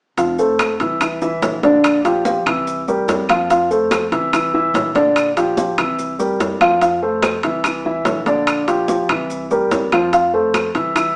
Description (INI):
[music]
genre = Afro-Cuban jazz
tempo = 145 BPM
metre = 4/4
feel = straight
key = F major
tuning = A4 = 440 Hz
[part]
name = dark grand piano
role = accompaniment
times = 0.2-11.1 s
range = D3 to F5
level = -15 LUFS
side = equal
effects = none
[part]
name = upright bass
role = bass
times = 0.2-11.2 s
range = F1 to F2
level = -29 LUFS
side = equal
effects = none
[part]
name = congas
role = percussion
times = 0.2-11.2 s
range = none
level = -26 LUFS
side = equal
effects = none
[part]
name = maracas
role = percussion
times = 0.2-11.2 s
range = none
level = -38 LUFS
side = equal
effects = none
[part]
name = timbales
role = percussion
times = 0.2-11.2 s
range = none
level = -21 LUFS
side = equal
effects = none
[part]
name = claves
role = percussion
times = 0.6-11.2 s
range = none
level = -26 LUFS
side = equal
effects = none
[sound]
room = moderate stone room reverb, RT60 1.0 s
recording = band playing live in one room, small speaker sound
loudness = -14 LUFS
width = side -34 dB against mid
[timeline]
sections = 0.2-11.2 A section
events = none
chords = 0.2 F; 1.0 C7; 1.8 Bb69; 2.7 C7; 3.5 F; 4.3 C7; 5.2 Bb69; 6.0 C7; 6.8 F; 7.6 C7; 8.5 Bb69; 9.3 C7; 10.1 F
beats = | 0.18 0.59 1.01 1.42 | 1.84 2.25 2.67 3.08 | 3.50 3.91 4.33 4.74 | 5.16 5.57 5.99 6.40 | 6.82 7.23 7.64 8.06 | 8.47 8.89 9.30 9.72 | 10.13 10.54 10.96